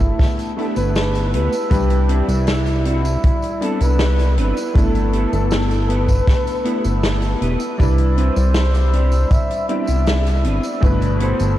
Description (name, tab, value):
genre	vaporwave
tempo	79 BPM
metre	4/4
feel	straight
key	G major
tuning	A4 = 440 Hz
part	breathy flugelhorn	melody	0.0-11.6 s	E4 to E5	-25 LUFS	equal	tape echo
part	warm electric grand piano	accompaniment	0.0-11.6 s	B2 to D5	-24 LUFS	left 1 dB	wide subtle chorus, diffuse ambient delay
part	warbly tape-like pad	sustained chords	0.0-11.6 s	A4 to E6	-31 LUFS	right 1 dB	chorus, built-in reverb, vintage 12-bit sampler grit
part	chorused synth bass	bass	0.0-11.6 s	E1 to D2	-17 LUFS	equal	none
part	kick drum	drums	0.0-11.0 s	none	-17 LUFS	equal	none
part	natural country drum kit	drums	0.0-11.6 s	hi-hat, snare drum, tambourine	-26 LUFS	equal	none
part	clean electric guitar	riff	0.6-11.4 s	A3 to B4	-29 LUFS	right 2 dB	ensemble chorus, diffuse ambient delay
room	moderate lush hall reverb, RT60 2.7 s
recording	dreamy mix soaked in reverb, cassette tape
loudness	-15 LUFS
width	side -13 dB against mid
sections	0.0-11.6 A section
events	none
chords	0.0 G69; 1.7 Cmaj9; 4.8 G69; 7.8 Cmaj9; 10.8 G69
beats	0.20 0.96 | 1.72 2.48 3.24 4.00 | 4.75 5.51 6.27 7.03 | 7.79 8.55 9.31 10.07 | 10.83